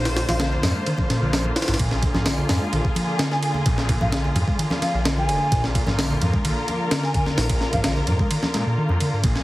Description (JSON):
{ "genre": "breakbeat, breaks", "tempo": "129 BPM", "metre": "4/4", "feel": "straight", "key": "unclear", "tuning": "A4 = 436 Hz", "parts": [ { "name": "muted studio string section", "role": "sustained chords", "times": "0.0-9.4 s", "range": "D3 to C5", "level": "-27 LUFS", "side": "left 1 dB", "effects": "sidechain pumping" }, { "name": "picked electric bass", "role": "riff", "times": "0.0-9.4 s", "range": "Ab2 to Ab3", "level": "-25 LUFS", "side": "equal", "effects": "none" }, { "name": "phased detuned saw bass", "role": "bass", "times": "0.0-9.4 s", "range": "F1 to Bb2", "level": "-25 LUFS", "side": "equal", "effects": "phaser" }, { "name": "breakbeat sampler-style drum kit", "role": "drums", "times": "0.1-9.4 s", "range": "hi-hat, kick drum, ride cymbal, snare drum", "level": "-24 LUFS", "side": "equal", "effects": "studio reverb" }, { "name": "mellow hollow silver concert flute", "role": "melody", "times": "0.3-0.5, 3.3-7.9 s", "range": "F5 to Ab5", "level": "-28 LUFS", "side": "equal", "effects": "old record sound, vintage 12-bit sampler grit, tape echo" }, { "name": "congas", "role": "percussion", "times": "0.3-9.0 s", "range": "none", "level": "-30 LUFS", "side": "equal", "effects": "none" } ], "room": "light reverb", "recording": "heavily compressed radio sound", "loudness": "-19 LUFS", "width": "side -17 dB against mid", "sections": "0.0-9.4 A section", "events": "none", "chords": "0.0 Bb7", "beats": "0.40 0.86 1.33 | 1.79 2.26 2.73 3.19 | 3.66 4.12 4.59 5.05 | 5.52 5.98 6.45 6.91 | 7.38 7.84 8.31 8.77 | 9.24" }